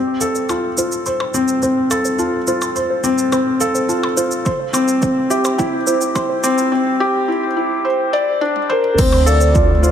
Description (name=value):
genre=piano and strings electronica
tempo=106 BPM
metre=4/4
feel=straight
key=D minor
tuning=A4 = 440 Hz
part: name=felt-muted upright piano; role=riff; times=0.0-9.9 s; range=C4 to D5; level=-16 LUFS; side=left 1 dB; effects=ping-pong delay
part: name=soft round pluck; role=arpeggios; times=0.2-9.9 s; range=C5 to D6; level=-25 LUFS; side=right 3 dB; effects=chorus, sidechain pumping, ping-pong delay
part: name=minimal click drum kit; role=drums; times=0.2-9.9 s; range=crash cymbal, percussion blips, shaker, toms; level=-24 LUFS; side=right 1 dB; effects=overdrive, studio reverb
part: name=electronic kick drum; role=drums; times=4.5-9.7 s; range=none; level=-18 LUFS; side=equal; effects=overdrive, studio reverb
part: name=warm velvety synth lead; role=melody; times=8.7-9.9 s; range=Bb4 to D5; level=-18 LUFS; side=equal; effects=chorus
part: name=muted symphonic double bass section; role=bass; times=9.0-9.9 s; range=D2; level=-14 LUFS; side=equal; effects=sidechain pumping
room=moderate huge ambient reverb, RT60 6.4 s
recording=high-pass filter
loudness=-14 LUFS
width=side -9 dB against mid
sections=0.0-9.0 A section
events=build-up 0.0-9.0; filter sweep 0.0-9.0; drum fill 8.6-9.0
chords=0.0 Dm7 (rootless); 4.5 Cadd9; 9.0 Dm7